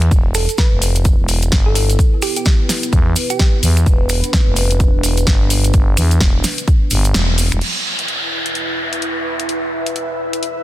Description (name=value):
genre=bass house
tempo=128 BPM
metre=4/4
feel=swing 60% on 16ths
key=E phrygian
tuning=A4 = 440 Hz
part: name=growling FM bass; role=bass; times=0.0-7.6 s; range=E1 to E2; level=-15 LUFS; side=equal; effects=sidechain pumping
part: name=house drum kit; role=drums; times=0.0-10.5 s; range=crash cymbal, finger snaps, hi-hat, snare drum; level=-20 LUFS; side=left 1 dB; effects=none
part: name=dark analog pad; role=sustained chords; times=1.0-10.6 s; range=E3 to B4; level=-26 LUFS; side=equal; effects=chorus, phaser, sidechain pumping
part: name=electronic kick drum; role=drums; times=0.1-6.8 s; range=none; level=-13 LUFS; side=equal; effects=none
part: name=cabasa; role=percussion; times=0.1-7.6 s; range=none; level=-25 LUFS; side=right 4 dB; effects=none
part: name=thumb-piano-like synth pluck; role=melody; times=0.3-3.9 s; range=G4 to B4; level=-25 LUFS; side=right 2 dB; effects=chorus, phaser, dub echo
part: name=downlifter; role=sound effects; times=7.6-10.6 s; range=none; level=-21 LUFS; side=equal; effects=none
part: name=ethereal airy pad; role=texture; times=8.2-10.6 s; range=E4 to E5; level=-23 LUFS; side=equal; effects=ensemble chorus, built-in reverb, sidechain pumping
room=little or no reverb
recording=dense, heavily limited modern master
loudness=-13 LUFS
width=side -14 dB against mid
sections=0.0-7.6 A section; 7.6-10.6 B section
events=filter sweep on FM bass 0.0-7.6; kick drops out 7.1-7.6; band accent 7.1; filter sweep on analog synth pad 7.6-10.6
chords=0.0 E5